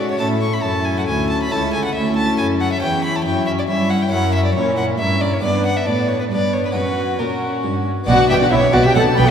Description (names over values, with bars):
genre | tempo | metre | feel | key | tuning
classical, baroque-style concerto movement with solo episodes | 138 BPM | 3/4 | straight | B minor | A4 = 440 Hz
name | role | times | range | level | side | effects
rich violin | melody | 0.0-9.3 s | A#4 to C#6 | -22 LUFS | left 1 dB | none
warm chamber violin section | melody | 0.0-9.3 s | F#4 to B5 | -27 LUFS | left 4 dB | none
warm chamber violin section | second line | 0.0-9.3 s | D4 to B4 | -23 LUFS | left 2 dB | none
dark studio viola section | accompaniment | 0.0-9.3 s | B3 to D4 | -24 LUFS | equal | none
harpsichord | accompaniment | 0.0-9.3 s | C#2 to C#5 | -26 LUFS | equal | none
warm chamber cello section | bass | 0.0-9.3 s | C#2 to B2 | -21 LUFS | right 2 dB | none
rich chamber double bass section | bass | 8.1-9.3 s | B1 | -19 LUFS | right 5 dB | none
room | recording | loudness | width
wet concert hall reverb, RT60 2.1 s | heard from further back in the room | -15 LUFS | side -8 dB against mid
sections
0.0-8.1 A section; 8.1-9.3 B section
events
none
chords
0.2 A; 1.5 A/C#; 2.8 C#dim/E; 4.1 F#7; 5.4 G; 6.8 F#; 8.1 Bm